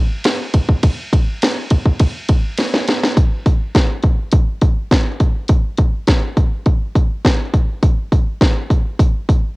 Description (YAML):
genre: metal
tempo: 103 BPM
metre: 4/4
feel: straight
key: none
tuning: none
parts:
  - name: house drum kit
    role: drums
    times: 0.2-9.4 s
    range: hi-hat, kick drum, ride cymbal, snare drum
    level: -14 LUFS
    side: equal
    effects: none
room: light reverb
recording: home recording on cassette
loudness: -14 LUFS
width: side -24 dB against mid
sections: 0.0-3.2 A section; 3.2-9.6 B section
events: drum fill 2.6-3.2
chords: none